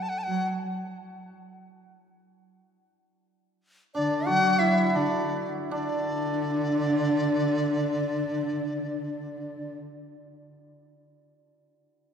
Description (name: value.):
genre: chinese traditional, Chinese chamber ensemble.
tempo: free time.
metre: none.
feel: none.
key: D gong mode.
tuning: A4 = 442 Hz.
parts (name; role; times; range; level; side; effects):
bright large dizi; melody; 0.0-0.5, 3.9-9.8 s; D5 to A5; -29 LUFS; left 2 dB; none.
dark cello; second line; 0.3-0.5, 4.0-9.8 s; D3 to F#3; -30 LUFS; right 2 dB; none.
mellow hollow xiao; second line; 0.3-0.5, 4.0-9.8 s; D4 to F#4; -32 LUFS; left 3 dB; none.
hammered dulcimer; second line; 3.9-9.9 s; D4 to F#4; -33 LUFS; right 2 dB; none.
room: wet church reverb, RT60 3.3 s.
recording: recorded in a church or concert hall.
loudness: -24 LUFS.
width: side -7 dB against mid.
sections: 0.0-5.7 A section; 5.7-9.0 B section.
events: slowing down 3.1-5.7.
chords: none.